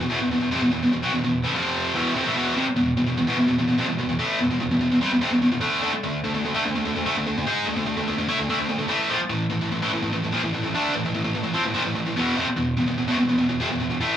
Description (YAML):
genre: metal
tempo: 147 BPM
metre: 4/4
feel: straight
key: unclear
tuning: A4 = 440 Hz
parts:
  - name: high-gain distorted guitar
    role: solo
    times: 0.0-14.2 s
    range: E2 to G#4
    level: -21 LUFS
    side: equal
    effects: distortion
room: light reverb, digital ambience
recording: small room ambience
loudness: -21 LUFS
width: side -10 dB against mid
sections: 0.0-2.3 A section; 2.3-14.2 B section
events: none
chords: 0.0 E5; 1.5 F5; 1.9 E5; 5.6 D5; 8.9 A5; 12.2 E5